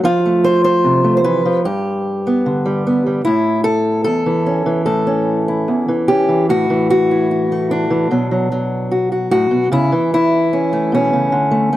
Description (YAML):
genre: folk, solo fingerstyle acoustic guitar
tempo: 75 BPM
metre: 4/4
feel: straight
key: A mixolydian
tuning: A4 = 441 Hz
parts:
  - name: fingerpicked acoustic archtop guitar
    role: solo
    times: 0.0-11.8 s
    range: E2 to C5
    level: -13 LUFS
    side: equal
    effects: none
room: little or no reverb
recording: dry, close 1970s-style studio recording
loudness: -13 LUFS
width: side -14 dB against mid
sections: 0.0-6.5 A section; 6.5-11.8 B section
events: none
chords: 0.0 F; 1.6 G; 3.2 A; 6.5 A5; 8.1 Bm; 9.7 A/C#